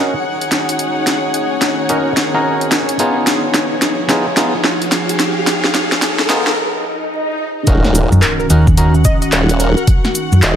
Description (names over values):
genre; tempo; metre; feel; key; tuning
glitch hop; 109 BPM; 4/4; swing 63% on 16ths; Eb minor; A4 = 440 Hz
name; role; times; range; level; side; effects
warbly tape-like pad; sustained chords; 0.1-10.6 s; Eb3 to Ab4; -23 LUFS; right 1 dB; chorus, built-in reverb, sidechain pumping
overdriven clav; stabs; 0.0-8.9 s; Cb4 to Bb4; -19 LUFS; equal; sidechain pumping, low-pass filter, digital delay
riser, swell and impact; sound effects; 0.9-9.9 s; none; -22 LUFS; equal; none
warm chamber string section; texture; 0.0-10.6 s; Eb4 to Gb5; -21 LUFS; left 1 dB; sidechain pumping
drum and bass drum kit; drums; 0.4-10.6 s; handclaps, hi-hat, shaker, snare drum; -17 LUFS; equal; overdrive
formant-sweep wobble bass; bass; 7.7-10.6 s; Eb1; -14 LUFS; equal; chorus
electronic kick drum; drums; 7.7-10.0 s; none; -12 LUFS; equal; overdrive
hollow-body short-scale fingered electric bass; bass; 8.1-10.4 s; Eb2 to Gb2; -10 LUFS; equal; none
plucky unison lead; melody; 8.2-10.6 s; Bb4 to Eb5; -23 LUFS; equal; digital delay
room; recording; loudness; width
moderate lush hall reverb, RT60 1.9 s; vinyl crackle, high-pass filter; -12 LUFS; side -9 dB against mid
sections
0.0-7.7 A section; 7.7-10.6 B section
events
build-up 0.0-7.7; drum fill 0.0-6.6; filter sweep on clav 0.0-7.7; filter sweep on ambient pad 0.0-7.7; riser 0.9-6.6; break 6.6-7.7; swell 6.6-7.7; drop 7.7-10.6; impact 7.7-9.9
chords
0.0 Ebm7; 3.3 Fm7b5; 7.7 Ebm7